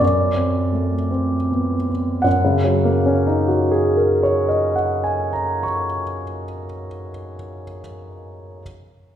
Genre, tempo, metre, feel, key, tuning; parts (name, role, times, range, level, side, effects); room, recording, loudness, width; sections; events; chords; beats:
classical, impressionist solo piano; 24-30 BPM (dotted quarters); 6/8; rubato; F# major; A4 = 440 Hz
warm concert grand piano; solo; 0.0-8.6 s; F#2 to C#6; -18 LUFS; equal
wet recital hall reverb, RT60 1.6 s; recorded in a church or concert hall; -17 LUFS; side -10 dB against mid
0.0-2.2 A section; 2.2-6.3 B section
slowing down 0.0-2.2
0.0 D7/F#; 2.2 F#69
0.01 | 2.25 4.25